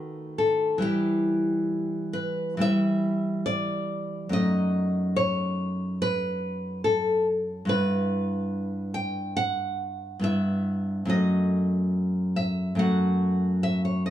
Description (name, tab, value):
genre	romantic piece for solo classical guitar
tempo	70 BPM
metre	4/4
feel	rubato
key	E minor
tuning	A4 = 440 Hz
part	nylon-string guitar	solo	0.0-14.1 s	F#2 to G5	-24 LUFS	equal	none
room	light reverb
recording	small room ambience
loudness	-24 LUFS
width	side -12 dB against mid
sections	0.0-14.1 A section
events	none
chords	0.0 B7/D#; 0.8 Em; 4.3 D#dim/F#; 7.7 Em/G; 11.1 D#dim/F#